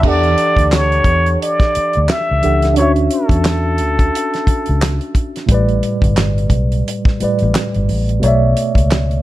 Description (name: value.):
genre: R&B, neo-soul.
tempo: 88 BPM.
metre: 4/4.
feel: swing 60% on 16ths.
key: E dorian.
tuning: A4 = 444 Hz.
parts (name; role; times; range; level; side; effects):
trumpet with plunger mute; melody; 0.0-5.1 s; A4 to E5; -17 LUFS; equal; tape echo.
tine electric piano; accompaniment; 0.0-9.2 s; A2 to A5; -18 LUFS; right 1 dB; medium stereo tremolo.
vintage muted fingered electric bass; bass; 0.0-9.2 s; G1 to E2; -16 LUFS; equal; none.
damped 70s drum kit; drums; 0.0-9.2 s; crash cymbal, handclaps, hi-hat, kick drum, snare drum; -16 LUFS; equal; none.
room: light reverb.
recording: none.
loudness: -12 LUFS.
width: side -15 dB against mid.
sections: 0.0-9.2 A section.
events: none.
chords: 0.0 Em11; 2.8 Dmaj9; 5.5 A9sus4; 8.2 Bm11.